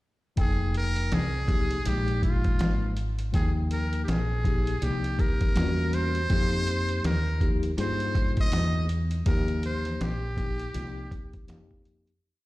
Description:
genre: hip hop, jazz-hop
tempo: 81 BPM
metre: 4/4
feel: swing 59% on 16ths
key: F minor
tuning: A4 = 443 Hz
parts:
  - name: trumpet with metal mute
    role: melody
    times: 0.4-11.5 s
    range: F4 to Eb5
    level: -33 LUFS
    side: right 1 dB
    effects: none
  - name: mellow tine electric piano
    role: accompaniment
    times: 0.4-12.1 s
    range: F3 to G5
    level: -33 LUFS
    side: left 3 dB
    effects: medium stereo tremolo
  - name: woody fretless electric bass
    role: bass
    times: 0.4-12.2 s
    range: F1 to G2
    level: -28 LUFS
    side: equal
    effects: lush chorus
  - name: dusty soul sampler-style drum kit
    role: drums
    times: 0.4-12.2 s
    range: hi-hat, kick drum, snare drum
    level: -28 LUFS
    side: equal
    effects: overdrive
room: little or no reverb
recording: played on a big sound system in a bare room, stone room reverb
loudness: -24 LUFS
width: side -18 dB against mid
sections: 0.4-12.2 A section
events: fade-out 9.3-12.2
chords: 0.4 Fm7; 3.3 Eb6; 5.6 Edim7; 6.3 Fm7; 9.3 Eb6; 11.5 F9sus4

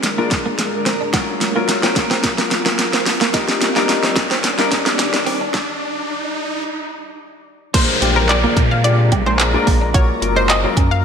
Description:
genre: dance-pop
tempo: 109 BPM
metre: 4/4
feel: straight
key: unclear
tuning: A4 = 440 Hz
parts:
  - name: warm grand piano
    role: accompaniment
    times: 0.0-11.0 s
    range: Gb3 to Bb4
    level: -22 LUFS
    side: left 5 dB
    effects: wide subtle chorus, sidechain pumping
  - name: granular cloud pad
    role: sustained chords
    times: 0.0-11.0 s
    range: Eb3 to Bb5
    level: -26 LUFS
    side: equal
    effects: built-in reverb, sidechain pumping
  - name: pop drum kit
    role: drums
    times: 0.0-10.9 s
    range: crash cymbal, handclaps, hi-hat, kick drum, snare drum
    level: -17 LUFS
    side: equal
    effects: gated reverb
  - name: riser and downlifter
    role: sound effects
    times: 0.0-11.0 s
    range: none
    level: -25 LUFS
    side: equal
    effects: none
  - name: twelve-string electric guitar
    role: riff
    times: 0.2-10.9 s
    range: G3 to Gb4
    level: -25 LUFS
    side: right 7 dB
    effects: ensemble chorus
  - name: analog pluck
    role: melody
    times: 7.7-11.0 s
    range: Bb4 to F5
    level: -20 LUFS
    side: left 1 dB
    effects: chorus, sidechain pumping, digital delay
  - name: warm sub bass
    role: bass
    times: 8.0-11.0 s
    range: Gb1 to Bb2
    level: -18 LUFS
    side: equal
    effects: sidechain pumping
room: moderate lush hall reverb, RT60 1.7 s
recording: bright 1980s-style digital production, high-pass filter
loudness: -14 LUFS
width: side -7 dB against mid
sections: 0.0-7.7 A section; 7.7-11.0 B section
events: build-up 0.0-7.7; drum fill 0.0-5.5; riser 0.0-7.7; stop 5.5-7.7; drop 7.7-11.0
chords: 0.0 Bb7; 1.1 Gbmaj7; 3.3 Ebmaj7; 7.7 Bb7; 9.9 Gbmaj7

